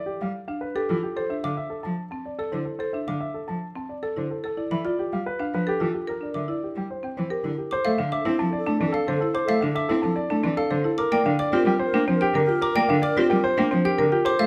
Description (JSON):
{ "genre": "classical, minimalist pattern music", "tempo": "110 BPM", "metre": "3/4", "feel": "straight", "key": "D dorian, F major from 7.7 s", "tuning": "A4 = 440 Hz", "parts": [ { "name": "warm grand piano", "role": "melody", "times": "0.0-14.5 s", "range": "G4 to A5", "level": "-30 LUFS", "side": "equal", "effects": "none" }, { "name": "clear cello", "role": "accompaniment", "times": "0.2-14.5 s", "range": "D3 to C4", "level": "-30 LUFS", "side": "equal", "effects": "none" }, { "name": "buzzing marimba with hard mallets", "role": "arpeggios", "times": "0.5-14.5 s", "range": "C4 to Bb4", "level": "-29 LUFS", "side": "equal", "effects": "none" }, { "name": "xylophone with plastic mallets", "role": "arpeggios", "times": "1.4-14.5 s", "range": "F5 to D6", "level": "-32 LUFS", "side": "equal", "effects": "none" }, { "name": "wooden-headed alto flute", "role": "second line", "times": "7.7-14.5 s", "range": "A4 to Bb4", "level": "-34 LUFS", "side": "equal", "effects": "none" } ], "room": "moderate recital hall reverb, RT60 1.5 s", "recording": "close, detailed microphones", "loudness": "-25 LUFS", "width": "mono", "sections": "0.0-7.7 A section; 7.7-14.5 B section", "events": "none", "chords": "0.0 G7sus2; 1.2 D7(no3); 4.4 G13; 6.1 C7; 7.7 Fmaj7; 11.0 Gm7" }